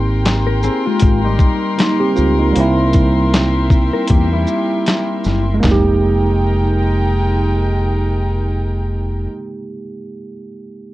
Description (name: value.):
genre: lo-fi hip hop.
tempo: 78 BPM.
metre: 4/4.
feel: swing 58% on 16ths.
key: F minor.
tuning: A4 = 444 Hz.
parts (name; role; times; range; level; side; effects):
tine electric piano; accompaniment; 0.0-10.9 s; G3 to G4; -18 LUFS; right 3 dB; cassette tape.
warm studio string section; sustained chords; 0.0-9.3 s; Ab3 to C6; -24 LUFS; left 2 dB; none.
deep dub fingered electric bass; bass; 0.0-9.3 s; F1 to E2; -17 LUFS; left 1 dB; none.
dusty soul sampler-style drum kit; drums; 0.3-5.8 s; handclaps, hi-hat, kick drum, shaker, snare drum, toms; -15 LUFS; equal; none.
mellow electric guitar; second line; 0.5-5.4 s; G3 to Bb4; -20 LUFS; left 3 dB; wide subtle chorus, analog delay.
room: light reverb.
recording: cassette tape.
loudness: -13 LUFS.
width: side -16 dB against mid.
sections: 0.0-5.6 A section; 5.6-8.7 B section.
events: none.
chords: 0.0 Abmaj9; 2.6 C7; 5.6 Fm11.